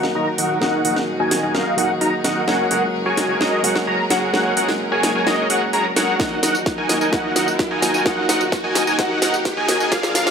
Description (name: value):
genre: EDM, festival progressive house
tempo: 129 BPM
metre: 4/4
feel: straight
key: Eb minor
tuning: A4 = 440 Hz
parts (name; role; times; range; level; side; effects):
- dark grand piano; accompaniment; 0.0-10.3 s; F3 to Gb4; -25 LUFS; equal; sidechain pumping, tape echo
- bright chamber string section; sustained chords; 0.0-10.3 s; Eb3 to Bb4; -30 LUFS; equal; sidechain pumping
- wide unison lead; arpeggios; 0.0-10.3 s; Eb5 to Bb5; -22 LUFS; equal; ensemble chorus, sidechain pumping, tape echo
- dense compressed supersaw; riff; 0.0-10.3 s; D4 to Bb5; -22 LUFS; equal; sidechain pumping, low-pass filter, tape echo
- detuned saw bass; bass; 0.0-10.3 s; Eb1 to F2; -34 LUFS; equal; none
- house drum kit; drums; 0.0-10.3 s; hi-hat, snare drum, tambourine; -22 LUFS; equal; none
- riser; sound effects; 4.8-10.3 s; none; -32 LUFS; right 2 dB; none
- electronic kick drum; drums; 6.2-10.0 s; none; -26 LUFS; equal; none
room: moderate digital room reverb, RT60 1.2 s, digital ambience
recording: high-pass filter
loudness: -16 LUFS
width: side -6 dB against mid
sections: 0.0-10.3 A section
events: build-up 0.0-10.3; drum fill 0.0-10.3; filter sweep on supersaw synth 0.0-10.3; filter sweep on analog synth lead 0.0-10.3; filter sweep 0.0-10.3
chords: 0.0 Ebm; 2.5 Gbadd9; 6.2 Ebm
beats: 0.15 | 0.62 1.08 1.55 2.01 | 2.48 2.94 3.41 3.87 | 4.34 4.80 5.27 5.73 | 6.20 6.66 7.13 7.59 | 8.06 8.52 8.99 9.45 | 9.92